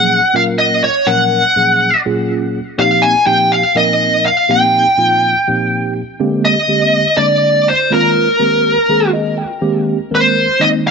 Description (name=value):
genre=jazz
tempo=245 BPM (eighths)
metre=7/8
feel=straight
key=unclear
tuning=A4 = 440 Hz
part: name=smooth overdriven lead guitar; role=melody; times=0.0-10.9 s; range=Bb4 to Ab5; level=-12 LUFS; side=equal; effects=none
part: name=mellow tine electric piano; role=accompaniment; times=0.0-10.9 s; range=Bb2 to G5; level=-16 LUFS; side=right 1 dB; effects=medium stereo tremolo, phaser
room=light reverb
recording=nothing above 7.8 kHz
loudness=-11 LUFS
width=side -5 dB against mid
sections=0.0-9.6 A section; 9.6-10.9 B section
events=tine electric piano fill 8.9-9.6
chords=0.0 Gbmaj9/Bb; 2.8 Eb69/Bb; 6.2 Abmaj9#11; 7.9 Bb9sus4; 9.6 Abmaj9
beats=0.08 0.33 0.57 0.81 | 1.06 1.30 1.55 1.79 2.04 2.29 2.53 | 2.77 3.02 3.27 3.51 3.75 4.00 4.24 | 4.49 4.73 4.98 5.22 5.47 5.71 5.96 | 6.20 6.45 6.69 6.93 7.18 7.42 7.67 | 7.91 8.15 8.40 8.64 8.89 9.13 9.38 | 9.62 9.86 10.11 10.35 10.59 10.84